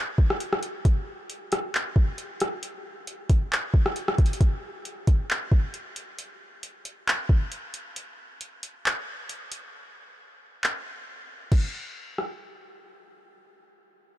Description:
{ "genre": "hip hop", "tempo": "135 BPM", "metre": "4/4", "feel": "half-time", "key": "none", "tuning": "none", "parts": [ { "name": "smooth R&B drum kit", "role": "drums", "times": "0.2-12.3 s", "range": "crash cymbal, handclaps, hi-hat, kick drum, rim click", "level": "-24 LUFS", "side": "equal", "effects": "none" } ], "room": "little or no reverb", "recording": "dark, warm production", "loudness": "-24 LUFS", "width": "side -14 dB against mid", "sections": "0.0-4.4 A section; 4.4-11.5 B section; 11.5-14.2 C section", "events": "kick muted 9.7-11.5", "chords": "none" }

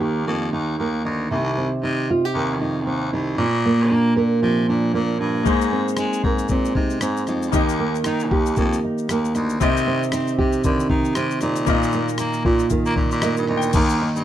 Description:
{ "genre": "acoustic pop", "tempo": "116 BPM", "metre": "4/4", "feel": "swing 60% on 16ths", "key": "unclear", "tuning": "A4 = 440 Hz", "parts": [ { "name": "nylon-string guitar", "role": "accompaniment", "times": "0.0-14.2 s", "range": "Bb2 to Bb4", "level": "-20 LUFS", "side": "right 2 dB", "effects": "none" }, { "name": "raspy baritone saxophone", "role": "bass", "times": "0.0-14.2 s", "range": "C2 to C4", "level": "-25 LUFS", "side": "left 2 dB", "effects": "none" }, { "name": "bright grand piano", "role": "accompaniment", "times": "5.4-13.8 s", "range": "Bb3 to G5", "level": "-28 LUFS", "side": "left 5 dB", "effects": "none" }, { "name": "dusty soul sampler-style drum kit", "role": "drums", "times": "5.5-14.2 s", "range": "crash cymbal, kick drum, rim click, shaker", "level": "-24 LUFS", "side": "left 2 dB", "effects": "none" } ], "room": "light reverb", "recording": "close, detailed microphones", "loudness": "-18 LUFS", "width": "side -11 dB against mid", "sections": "0.0-13.7 A section", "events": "grand piano fill 13.0-13.7", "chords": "0.0 Eb; 1.3 Cm; 3.4 Bb; 5.5 Abadd9; 7.5 Eb; 9.6 Cm; 11.7 Bbsus4" }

